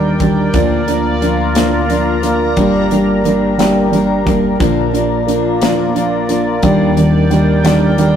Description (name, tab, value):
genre	six-eight pop ballad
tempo	59 BPM (dotted quarters)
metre	6/8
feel	straight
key	Bb major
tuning	A4 = 440 Hz
part	felt-muted upright piano	accompaniment	0.0-8.2 s	Eb3 to D4	-14 LUFS	right 1 dB	none
part	sweeping resonant pad	sustained chords	0.0-8.2 s	Eb3 to Bb5	-18 LUFS	equal	chorus
part	picked steel-string acoustic guitar	arpeggios	0.0-8.2 s	G2 to Bb4	-24 LUFS	left 4 dB	none
part	upright bass	bass	0.0-8.2 s	G1 to Eb2	-20 LUFS	left 1 dB	none
part	modern studio drum kit	drums	0.2-8.1 s	hi-hat, kick drum, snare drum	-20 LUFS	left 2 dB	none
room	light reverb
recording	rough rehearsal-room recording, tube saturation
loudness	-11 LUFS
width	side -9 dB against mid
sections	0.0-8.2 A section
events	none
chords	0.0 Ebmaj7; 0.5 Bb/D; 2.6 Gm; 4.6 Bb; 6.6 Ebmaj7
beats	| 0.54 1.56 | 2.57 3.59 | 4.61 5.62 | 6.63 7.65